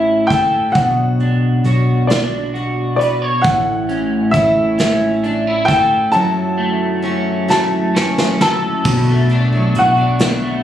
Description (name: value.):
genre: six-eight pop ballad.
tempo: 44 BPM (dotted quarters).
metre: 6/8.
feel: straight.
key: B minor.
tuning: A4 = 438 Hz.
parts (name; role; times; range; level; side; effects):
warm baby grand piano; melody; 0.0-10.6 s; D5 to A5; -17 LUFS; equal; none.
electric guitar at the edge of break-up; accompaniment; 0.0-10.6 s; F#2 to C#5; -18 LUFS; equal; double-tracked left and right.
picked steel-string acoustic guitar; arpeggios; 0.0-10.6 s; B2 to C#5; -25 LUFS; right 1 dB; none.
vintage muted fingered electric bass; bass; 0.0-10.6 s; A1 to B1; -20 LUFS; equal; none.
soft brush drum kit; drums; 0.3-10.4 s; crash cymbal, hi-hat, kick drum, snare drum; -20 LUFS; right 1 dB; none.
room: light reverb, small room ambience.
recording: recorded on a phone in the room, studio reverb, compression.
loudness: -13 LUFS.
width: side -11 dB against mid.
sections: 0.0-8.8 A section; 8.8-10.6 B section.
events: drum fill 7.5-8.8.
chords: 0.0 A; 0.8 Bmadd9; 3.4 A; 6.1 F#m7; 8.8 Bm7.